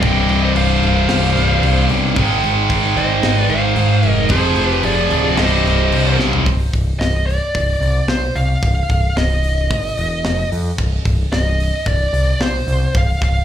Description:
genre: heavy metal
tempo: 111 BPM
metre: 4/4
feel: straight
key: C minor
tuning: A4 = 440 Hz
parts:
  - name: high-gain lead guitar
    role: melody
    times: 0.0-13.4 s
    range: C5 to G5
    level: -22 LUFS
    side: equal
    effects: distortion, slapback echo, digital delay
  - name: high-gain lead guitar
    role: second line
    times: 0.0-6.2 s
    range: Ab4 to Eb5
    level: -24 LUFS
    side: right 3 dB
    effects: distortion, slapback echo, digital delay
  - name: distorted electric guitar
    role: riff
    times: 0.0-6.5 s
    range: C2 to Ab3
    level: -24 LUFS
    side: equal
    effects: overdrive, slapback echo
  - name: high-gain distorted guitar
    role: riff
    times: 0.0-6.5 s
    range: C2 to Ab3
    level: -20 LUFS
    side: left 8 dB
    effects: distortion, slapback echo
  - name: tight distorted guitar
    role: riff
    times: 0.0-6.5 s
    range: C2 to Ab3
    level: -19 LUFS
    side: right 11 dB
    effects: distortion, slapback echo
  - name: growling picked electric bass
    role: bass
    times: 0.0-13.4 s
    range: C1 to Ab2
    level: -17 LUFS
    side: equal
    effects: overdrive
  - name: tight metal drum kit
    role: drums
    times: 0.0-13.3 s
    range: crash cymbal, hi-hat, kick drum, snare drum, toms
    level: -23 LUFS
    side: left 1 dB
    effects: none
room: studio ambience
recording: live gig heard through the venue's PA, club reverb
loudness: -14 LUFS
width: side -10 dB against mid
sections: 0.0-6.5 A section; 6.5-13.4 B section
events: half time 0.0-6.5; drum fill 6.2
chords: 0.0 C5; 2.2 Ab; 4.3 Fm; 5.4 Cm; 9.7 Ab5; 10.2 Ebsus2/F; 10.8 Cm

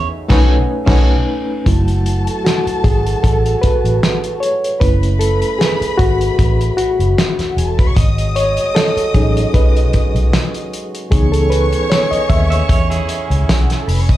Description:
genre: lush 1970s-style soul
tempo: 76 BPM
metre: 4/4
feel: swing 54% on 16ths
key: unclear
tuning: A4 = 440 Hz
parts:
  - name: warm symphonic string section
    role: second line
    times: 0.0-14.2 s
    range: D#4 to D#6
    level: -25 LUFS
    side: right 1 dB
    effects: plate reverb, slapback echo
  - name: reed electric piano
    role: accompaniment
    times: 0.0-14.2 s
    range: E3 to G#5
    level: -18 LUFS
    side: left 1 dB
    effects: fast tremolo, plate reverb, slapback echo
  - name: clear French horn section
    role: sustained chords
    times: 0.0-14.2 s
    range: C#3 to F#4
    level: -29 LUFS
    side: right 3 dB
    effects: plate reverb
  - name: electric guitar at the edge of break-up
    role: riff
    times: 0.0-1.2, 12.5-14.0 s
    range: E4 to E5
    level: -25 LUFS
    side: right 8 dB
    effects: slapback echo
  - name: vintage muted fingered electric bass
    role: bass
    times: 0.3-14.2 s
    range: E1 to E2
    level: -15 LUFS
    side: equal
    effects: none
  - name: warm soul drum kit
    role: drums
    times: 0.3-14.2 s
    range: crash cymbal, hi-hat, kick drum, snare drum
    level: -16 LUFS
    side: equal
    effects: none
room: light reverb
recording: live gig heard through the venue's PA, club reverb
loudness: -12 LUFS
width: side -14 dB against mid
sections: 0.0-1.7 A section; 1.7-14.2 B section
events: band accent 0.1-1.7; reed electric piano solo 1.7-14.2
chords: 0.1 B13; 1.7 F#m7; 4.8 B9sus4/F#; 8.0 G#7sus4; 11.1 C#m7

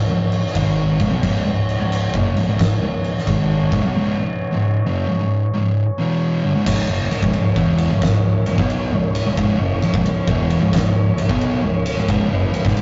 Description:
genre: stoner and doom metal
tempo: 88 BPM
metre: 4/4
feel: swing 66% on 8ths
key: C# minor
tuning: A4 = 440 Hz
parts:
  - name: mellow tonewheel organ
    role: sustained chords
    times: 0.0-12.8 s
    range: C#4 to C#5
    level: -32 LUFS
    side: equal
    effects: slow rotary speaker
  - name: growling picked electric bass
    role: bass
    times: 0.0-12.8 s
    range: C#1 to B1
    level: -25 LUFS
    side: equal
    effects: overdrive
  - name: thick fuzz guitar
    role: riff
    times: 0.1-12.8 s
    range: C#2 to B3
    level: -26 LUFS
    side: equal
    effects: distortion
  - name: thick fuzz guitar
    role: riff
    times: 0.1-12.8 s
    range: C#2 to B3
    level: -23 LUFS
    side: equal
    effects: distortion
  - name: oversized low-tuned drum kit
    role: drums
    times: 0.3-12.8 s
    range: crash cymbal, kick drum, ride cymbal, snare drum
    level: -25 LUFS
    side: equal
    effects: none
room: wet booth ambience, RT60 0.2 s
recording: rough rehearsal-room recording, tube saturation, nothing above 7.6 kHz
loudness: -19 LUFS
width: mono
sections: 0.0-6.7 A section; 6.7-12.8 B section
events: none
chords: 0.0 C#m

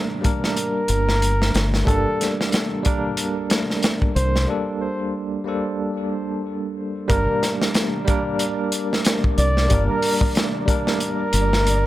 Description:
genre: trip hop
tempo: 92 BPM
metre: 4/4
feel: swing 57% on 16ths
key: G minor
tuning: A4 = 440 Hz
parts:
  - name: barky tine electric piano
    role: accompaniment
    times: 0.0-11.9 s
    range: G3 to Bb4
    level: -24 LUFS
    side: right 1 dB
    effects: slow stereo tremolo, vintage 12-bit sampler grit, tape echo
  - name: crunchy breakbeat drum kit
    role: drums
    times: 0.2-11.8 s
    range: hi-hat, kick drum, snare drum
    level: -22 LUFS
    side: equal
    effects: none
  - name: trumpet with bucket mute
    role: melody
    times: 0.4-11.9 s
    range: A4 to D5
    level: -26 LUFS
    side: equal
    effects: tape echo
  - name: deep dub fingered electric bass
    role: bass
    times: 0.9-11.9 s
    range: G1 to C2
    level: -20 LUFS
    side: equal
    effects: none
  - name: flickering grainy texture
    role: texture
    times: 7.9-11.9 s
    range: D5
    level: -34 LUFS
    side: right 1 dB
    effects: built-in reverb
room: small room ambience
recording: none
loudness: -19 LUFS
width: side -15 dB against mid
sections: 0.0-7.1 A section; 7.1-11.9 B section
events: break 4.5-7.1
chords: 0.0 Gmadd9; 7.1 Gm

